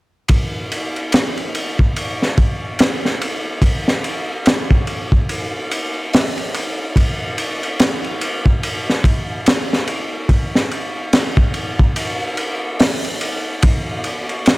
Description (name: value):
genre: trip hop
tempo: 72 BPM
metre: 4/4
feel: swing 60% on 16ths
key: none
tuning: none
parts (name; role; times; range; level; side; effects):
- crunchy breakbeat drum kit; drums; 0.3-14.6 s; hi-hat, kick drum, ride cymbal, snare drum; -16 LUFS; equal; none
room: light reverb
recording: none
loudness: -16 LUFS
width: side -21 dB against mid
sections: 0.3-14.6 A section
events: none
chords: none